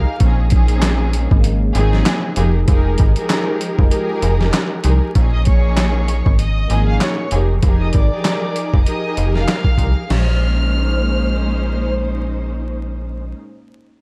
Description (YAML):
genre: hip hop, boom-bap hip-hop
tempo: 97 BPM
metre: 4/4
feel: swing 58% on 16ths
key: Bb minor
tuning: A4 = 440 Hz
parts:
  - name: clear studio violin section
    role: melody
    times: 0.0-0.2, 5.3-11.9 s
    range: Db5 to F6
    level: -29 LUFS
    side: equal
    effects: high-pass filter, low-pass filter, analog delay
  - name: warm symphonic string section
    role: accompaniment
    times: 0.0-13.3 s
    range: Bb2 to C5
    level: -25 LUFS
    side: equal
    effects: high-pass filter, low-pass filter
  - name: metallic FM bass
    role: bass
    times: 0.0-13.3 s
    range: F1 to C2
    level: -19 LUFS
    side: equal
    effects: none
  - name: dark analog pad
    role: sustained chords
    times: 1.1-5.1 s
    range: Db3 to G5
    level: -30 LUFS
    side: equal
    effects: chorus, high-pass filter, low-pass filter
  - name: boom bap sampler-style drum kit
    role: drums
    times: 0.2-10.3 s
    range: crash cymbal, handclaps, hi-hat, kick drum, snare drum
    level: -19 LUFS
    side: equal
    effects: none
room: little or no reverb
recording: dark, warm production, vinyl crackle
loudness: -17 LUFS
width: mono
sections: 0.0-5.2 A section; 5.2-10.1 B section; 10.1-12.6 C section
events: kick muted 3.9-5.2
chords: 0.2 Bbm11; 2.4 Fm11; 5.2 Bbm11; 7.3 Fm11; 10.1 Bbm11